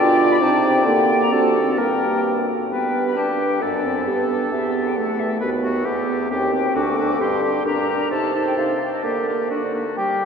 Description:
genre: quick classical-period movement for wind quintet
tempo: 132 BPM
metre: 2/4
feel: straight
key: G major, G minor from 6.3 s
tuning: A4 = 440 Hz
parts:
  - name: silver concert flute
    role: melody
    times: 0.0-10.3 s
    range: Bb4 to D6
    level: -25 LUFS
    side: left 2 dB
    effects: none
  - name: warm oboe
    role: second line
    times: 0.0-10.3 s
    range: F#4 to D5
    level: -26 LUFS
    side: left 2 dB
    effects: none
  - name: mellow clarinet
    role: accompaniment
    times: 0.0-10.3 s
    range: Eb4 to C5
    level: -24 LUFS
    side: right 3 dB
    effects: none
  - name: warm French horn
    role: accompaniment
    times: 0.0-10.3 s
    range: G3 to Eb4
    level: -24 LUFS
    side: equal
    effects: none
  - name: mellow bassoon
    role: bass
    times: 0.0-10.3 s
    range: D2 to G4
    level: -24 LUFS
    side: right 1 dB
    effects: none
room: wet cathedral reverb, RT60 6.3 s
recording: heard from further back in the room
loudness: -18 LUFS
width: side -6 dB against mid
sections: 0.0-2.7 A section; 2.7-10.0 B section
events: none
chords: 0.4 Cm; 0.9 Gm/D; 1.3 D7; 1.8 Gm; 2.7 G; 3.6 D7/F#; 4.1 G; 4.5 Em; 5.4 B/D#; 5.9 Em; 6.3 Cm/Eb; 6.8 D; 7.2 Gm; 8.1 Adim/C; 9.0 Gm/D

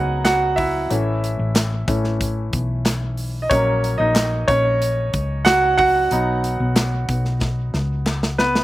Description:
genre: piano-driven pop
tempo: 92 BPM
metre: 4/4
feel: straight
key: B major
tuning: A4 = 440 Hz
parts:
  - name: clear baby grand piano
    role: accompaniment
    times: 0.0-8.6 s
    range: E3 to A#5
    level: -20 LUFS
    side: right 1 dB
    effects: slapback echo
  - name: hollow-body short-scale fingered electric bass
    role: bass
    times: 0.0-8.6 s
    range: A1 to C#2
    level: -22 LUFS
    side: left 1 dB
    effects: none
  - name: modern studio drum kit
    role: drums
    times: 0.3-8.6 s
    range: hi-hat, kick drum, snare drum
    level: -22 LUFS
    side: equal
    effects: none
  - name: group handclap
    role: percussion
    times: 0.3-8.2 s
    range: none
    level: -31 LUFS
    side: left 3 dB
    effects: none
room: little or no reverb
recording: recorded outdoors, with no room sound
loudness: -17 LUFS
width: side -16 dB against mid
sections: 0.0-8.6 A section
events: grand piano solo 0.0-8.6; drum fill 7.4-8.6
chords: 0.0 B; 0.9 A; 3.5 F#/A#; 6.1 B

